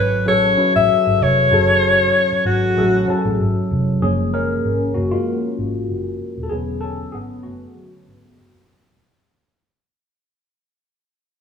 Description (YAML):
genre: lush 1970s-style soul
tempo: 96 BPM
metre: 4/4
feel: swing 54% on 16ths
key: F# minor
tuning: A4 = 440 Hz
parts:
  - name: clear alto saxophone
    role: melody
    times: 0.0-3.4 s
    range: F#4 to E5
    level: -15 LUFS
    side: left 2 dB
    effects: none
  - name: tine electric piano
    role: accompaniment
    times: 0.0-9.0 s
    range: D3 to G#5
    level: -21 LUFS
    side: equal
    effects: overdrive, phaser
  - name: vintage muted fingered electric bass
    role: bass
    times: 0.0-9.0 s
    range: D#1 to A1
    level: -22 LUFS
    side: equal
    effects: none
room: wet stone room reverb, RT60 1.2 s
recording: band playing live in one room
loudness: -15 LUFS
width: side -6 dB against mid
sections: 0.0-4.0 A section; 4.0-9.0 B section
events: fade-out 4.0-9.0; tine electric piano solo 4.0-9.0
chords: 0.0 F#m9; 4.0 F#maj9; 6.5 E13